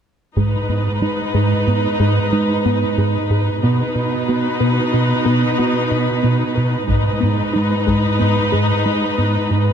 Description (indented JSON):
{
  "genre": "cinematic, hybrid orchestral and electronic film score",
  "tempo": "92 BPM",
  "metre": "5/4",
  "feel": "straight",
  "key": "G# minor",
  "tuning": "A4 = 442 Hz",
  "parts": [
    { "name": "warm symphonic viola section", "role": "accompaniment", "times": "0.4-9.7 s", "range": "D#4 to B4", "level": "-20 LUFS", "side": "equal", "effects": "none" },
    { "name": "tight sequenced synth", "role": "arpeggios", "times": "0.4-9.7 s", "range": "G#3 to B4", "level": "-24 LUFS", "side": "left 2 dB", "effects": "chorus, tape echo" },
    { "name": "rubbery square bass", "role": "riff", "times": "0.4-9.7 s", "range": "G#2 to B3", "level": "-19 LUFS", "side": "right 1 dB", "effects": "none" },
    { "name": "rich symphonic cello section", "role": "bass", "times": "0.4-9.7 s", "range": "G#2 to B2", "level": "-23 LUFS", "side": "right 2 dB", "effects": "none" },
    { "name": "taiko ensemble", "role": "drums", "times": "0.4-1.6, 6.9-8.2 s", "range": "none", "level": "-27 LUFS", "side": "left 2 dB", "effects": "none" }
  ],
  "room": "wet concert hall reverb, RT60 2.5 s",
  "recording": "none",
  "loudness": "-15 LUFS",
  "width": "side -8 dB against mid",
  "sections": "0.4-9.7 A section",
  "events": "build-up 0.4-9.7",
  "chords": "0.4 G#m; 3.6 B; 6.9 G#m"
}